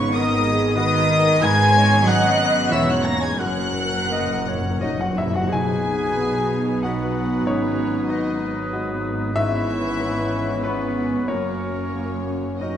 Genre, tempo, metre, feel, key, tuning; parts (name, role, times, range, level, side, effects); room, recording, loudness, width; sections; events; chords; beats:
cinematic, emotional film score for orchestra; 84-97 BPM; 3/4; rubato; B major; A4 = 440 Hz
warm symphonic violin section; melody; 0.0-12.8 s; C#4 to A#6; -28 LUFS; left 3 dB
warm symphonic violin section; second line; 0.0-12.8 s; B4 to A#5; -30 LUFS; left 2 dB
clear grand piano; accompaniment; 0.0-12.8 s; B1 to G#5; -27 LUFS; left 2 dB
dark studio viola section; accompaniment; 0.0-12.8 s; E3 to D#5; -28 LUFS; right 2 dB
mellow French horn section; sustained chords; 0.0-12.8 s; B2 to D#4; -29 LUFS; equal
dark symphonic double bass section; bass; 0.0-12.8 s; E1 to B1; -28 LUFS; right 3 dB
warm symphonic cello section; bass; 0.0-12.8 s; F#2 to A#3; -28 LUFS; right 3 dB
clear oboe; second line; 0.2-12.8 s; A#4 to A#5; -29 LUFS; left 2 dB
mellow hollow concert flute; second line; 0.2-12.8 s; D#5 to D#6; -28 LUFS; left 2 dB
timpani; percussion; 3.4-5.5 s; F#2; -28 LUFS; left 2 dB
warm clarinet; second line; 4.1-12.8 s; B3 to D#5; -28 LUFS; left 1 dB
wet scoring stage reverb, RT60 1.6 s; nothing above 10.4 kHz; -18 LUFS; side -9 dB against mid
0.0-5.5 A section; 5.5-12.8 A section
timpani fill 3.4-5.5
0.0 G#m7; 1.4 C#m7/G#; 3.4 F#; 5.5 B; 7.5 G#m7; 9.4 C#m7/G#; 11.3 F#
0.15 0.78 | 1.44 2.08 2.73 | 3.41 4.12 4.82 | 5.52 6.18 6.83 | 7.47 8.10 8.73 | 9.36 9.99 10.63 | 11.29 11.94 12.61